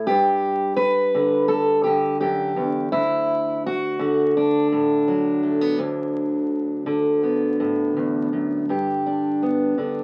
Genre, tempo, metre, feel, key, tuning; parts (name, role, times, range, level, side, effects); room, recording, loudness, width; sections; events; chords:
folk, solo fingerstyle acoustic guitar; 84 BPM; 4/4; straight; D major; A4 = 440 Hz
fingerpicked steel-string acoustic guitar; solo; 0.0-10.0 s; D2 to B4; -22 LUFS; equal
moderate studio reverb, RT60 0.5 s; very old 78 rpm record, vinyl crackle; -22 LUFS; mono
0.0-8.7 A section; 8.7-10.0 B section
0.1 G; 2.9 D6; 8.7 G